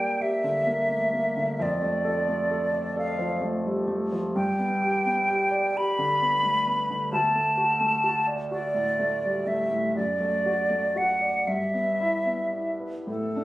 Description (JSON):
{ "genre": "classical, romantic duo for flute and grand piano", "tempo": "36-44 BPM (dotted quarters)", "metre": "6/8", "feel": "rubato", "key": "D minor, D major from 4.4 s", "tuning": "A4 = 440 Hz", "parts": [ { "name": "hollow concert flute", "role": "melody", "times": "0.0-13.4 s", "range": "A4 to B5", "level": "-24 LUFS", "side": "equal", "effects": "none" }, { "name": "warm grand piano", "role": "accompaniment", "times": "0.0-13.4 s", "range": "D2 to D5", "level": "-28 LUFS", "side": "equal", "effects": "none" } ], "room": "light reverb", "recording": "recorded on a phone in the room, studio reverb", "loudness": "-23 LUFS", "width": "side -16 dB against mid", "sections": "0.0-13.4 A section", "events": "none", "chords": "0.0 Gm; 1.6 Dm/F; 4.4 G; 7.1 D; 10.0 D/F#; 11.5 Em/G" }